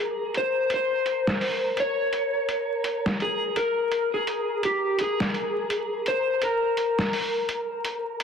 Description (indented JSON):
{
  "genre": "trip hop",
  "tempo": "84 BPM",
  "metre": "4/4",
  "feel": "swing 57% on 16ths",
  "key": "unclear",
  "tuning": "A4 = 440 Hz",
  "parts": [
    { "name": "electric slide guitar", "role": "melody", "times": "0.0-7.5 s", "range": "G4 to Db5", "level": "-25 LUFS", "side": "left 2 dB", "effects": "tape echo" },
    { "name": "wind-like tuned noise texture", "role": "texture", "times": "0.0-8.2 s", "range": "Bb4", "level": "-33 LUFS", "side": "right 2 dB", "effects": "built-in reverb" },
    { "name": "boom bap sampler-style drum kit", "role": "drums", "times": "0.3-8.2 s", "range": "hi-hat, snare drum", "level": "-29 LUFS", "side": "equal", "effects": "low-pass filter on hats, small room ambience, low-pass filter on kick, low-pass filter on snare" }
  ],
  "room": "moderate echo chamber reverb, RT60 1.6 s",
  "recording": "dense, heavily limited modern master, vinyl crackle",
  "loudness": "-23 LUFS",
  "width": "side -6 dB against mid",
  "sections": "0.0-8.2 A section",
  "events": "none",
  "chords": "none",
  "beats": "0.70 1.42 | 2.13 2.84 3.56 4.27 | 4.99 5.70 6.42 7.13 | 7.84"
}